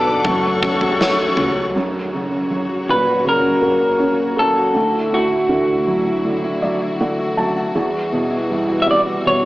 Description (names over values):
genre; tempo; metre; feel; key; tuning
pop ballad; 80 BPM; 4/4; straight; unclear; A4 = 442 Hz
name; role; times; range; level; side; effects
electric guitar through a small old amp; melody; 0.0-9.5 s; F#4 to E5; -17 LUFS; equal; dub echo
felt-muted upright piano; accompaniment; 0.0-9.5 s; D2 to A5; -21 LUFS; right 1 dB; dub echo
warm studio string section; sustained chords; 0.0-9.5 s; D2 to D6; -24 LUFS; left 1 dB; none
fingerpicked plugged-in steel-string acoustic guitar; arpeggios; 0.0-9.5 s; F#2 to F#4; -24 LUFS; left 1 dB; dub echo
woody fretless electric bass; bass; 0.0-1.7 s; F#1 to C#2; -27 LUFS; equal; none
huge arena drum kit; drums; 0.2-1.5 s; kick drum, snare drum, toms; -25 LUFS; equal; dub echo
room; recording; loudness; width
wet spring reverb, RT60 2.1 s; echo-heavy mix, AM radio sound; -15 LUFS; side -17 dB against mid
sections
0.0-1.8 A section; 1.8-9.5 B section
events
felt piano fill 6.3-7.8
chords
0.3 F#m; 1.8 F#; 4.8 Dadd9; 7.8 Emadd9